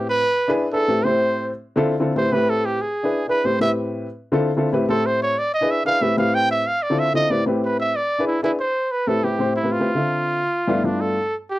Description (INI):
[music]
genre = jazz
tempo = 186 BPM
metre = 4/4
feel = straight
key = A minor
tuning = A4 = 440 Hz
[part]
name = clear trumpet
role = melody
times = 0.0-11.6 s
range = D4 to G5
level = -20 LUFS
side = right 1 dB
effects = none
[part]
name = dark baby grand piano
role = accompaniment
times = 0.0-11.2 s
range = G2 to E5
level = -21 LUFS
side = left 1 dB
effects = none
[sound]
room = light reverb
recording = dry, close 1970s-style studio recording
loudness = -18 LUFS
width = side -16 dB against mid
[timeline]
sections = 0.0-8.6 A section; 8.6-11.6 B section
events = trumpet solo 0.0-8.6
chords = 0.2 E7; 0.9 Am7; 1.5 Dm9; 2.2 Am7; 2.8 E7; 3.4 Am7; 4.1 Dm9; 4.7 Am7; 5.4 E7; 6.0 Am7; 6.7 Dm9; 7.3 Am7; 7.9 E7; 8.6 Am7; 9.9 Dm7; 10.5 G13